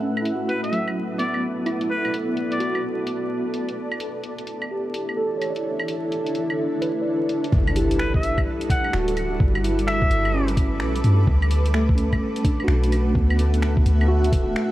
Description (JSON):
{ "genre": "future garage", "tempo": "128 BPM", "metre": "4/4", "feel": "swing 63% on 16ths", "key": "unclear", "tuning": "A4 = 440 Hz", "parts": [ { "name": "tine electric piano", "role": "accompaniment", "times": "0.0-14.7 s", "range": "F#3 to D5", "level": "-26 LUFS", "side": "right 2 dB", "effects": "medium tremolo, sidechain pumping, tape echo" }, { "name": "granular cloud pad", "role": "sustained chords", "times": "0.0-14.7 s", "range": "G3 to D6", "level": "-27 LUFS", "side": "left 1 dB", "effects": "built-in reverb, sidechain pumping" }, { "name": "garage drum kit", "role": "drums", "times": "0.2-14.7 s", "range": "claves, finger snaps, hi-hat", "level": "-32 LUFS", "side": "equal", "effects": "low-pass filter on hats, small room ambience, low-pass filter on perc, low-pass filter on snare" }, { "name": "trumpet with straight mute", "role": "melody", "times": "0.5-2.8, 8.0-10.5 s", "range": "B4 to F#5", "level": "-28 LUFS", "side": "left 1 dB", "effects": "analog delay" }, { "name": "soft 808-style bass", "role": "bass", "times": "7.5-14.5 s", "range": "D1 to G2", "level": "-21 LUFS", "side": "equal", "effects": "tube saturation, sidechain pumping" }, { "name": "electronic kick drum", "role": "drums", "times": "7.5-14.4 s", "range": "none", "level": "-21 LUFS", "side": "equal", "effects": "small room ambience" }, { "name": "impact", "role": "sound effects", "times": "7.5-9.4 s", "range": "none", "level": "-29 LUFS", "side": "equal", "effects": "none" } ], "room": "light reverb, digital ambience", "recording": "vinyl crackle", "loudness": "-20 LUFS", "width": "side -15 dB against mid", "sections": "0.0-7.5 A section; 7.5-14.7 B section", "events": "impact 7.5-9.4", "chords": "0.0 Bm7; 3.8 Asus4; 7.5 Gadd9; 11.3 D6" }